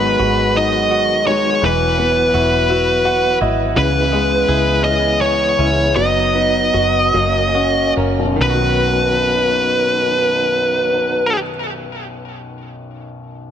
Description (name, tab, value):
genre	six-eight pop ballad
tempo	46-56 BPM (dotted quarters)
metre	6/8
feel	straight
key	B major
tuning	A4 = 440 Hz
part	fuzz lead guitar	melody	0.0-11.4 s	B4 to D#5	-16 LUFS	equal	distortion, digital delay
part	warm concert grand piano	accompaniment	0.0-13.5 s	B1 to F#5	-21 LUFS	left 4 dB	none
part	tonewheel organ	sustained chords	0.0-11.4 s	B2 to F#4	-25 LUFS	equal	overdrive, fast rotary speaker
part	direct-recorded clean electric guitar	arpeggios	0.0-12.0 s	D#3 to G#4	-24 LUFS	right 7 dB	digital delay
part	vintage muted fingered electric bass	bass	0.0-11.4 s	E1 to C#2	-22 LUFS	equal	none
room	light reverb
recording	none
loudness	-13 LUFS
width	side -9 dB against mid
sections	0.0-8.4 A section; 8.4-13.5 B section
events	grand piano fill 2.7-3.8; slowing down 3.8-8.4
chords	0.0 G#m7; 1.6 Esus2; 3.8 C#m7; 6.0 B/F#; 7.1 F#; 8.4 B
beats	0.56 | 1.62 2.69 | 3.76 4.84 | 5.96 7.13 | 8.40 9.71 | 11.03 12.34